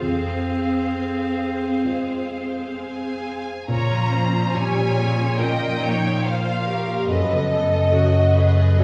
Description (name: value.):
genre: cinematic.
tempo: 63-71 BPM.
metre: 4/4.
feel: rubato.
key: unclear.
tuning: A4 = 440 Hz.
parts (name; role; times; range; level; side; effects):
clear clarinet; second line; 0.0-3.2 s; C4; -29 LUFS; equal; none.
rich symphonic violin section; second line; 0.0-8.8 s; Gb4 to F5; -33 LUFS; equal; none.
dark concert grand piano; accompaniment; 0.0-8.8 s; F2 to Db5; -29 LUFS; equal; none.
rich symphonic viola section; accompaniment; 0.0-8.8 s; G3 to Cb5; -29 LUFS; equal; none.
concert harp; arpeggios; 0.0-8.8 s; F2 to Ab5; -29 LUFS; equal; none.
warm symphonic violin section; melody; 2.8-8.8 s; Db5 to Bb5; -27 LUFS; equal; none.
rich symphonic cello section; bass; 3.7-8.8 s; Gb2 to Bb2; -25 LUFS; equal; none.
room: wet recital hall reverb, RT60 1.5 s.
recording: recorded in a church or concert hall, small room ambience.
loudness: -21 LUFS.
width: mono.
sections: 0.0-3.7 A section; 3.7-8.8 B section.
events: none.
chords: 0.0 Fm; 3.7 Bbm; 7.1 Gbmadd9.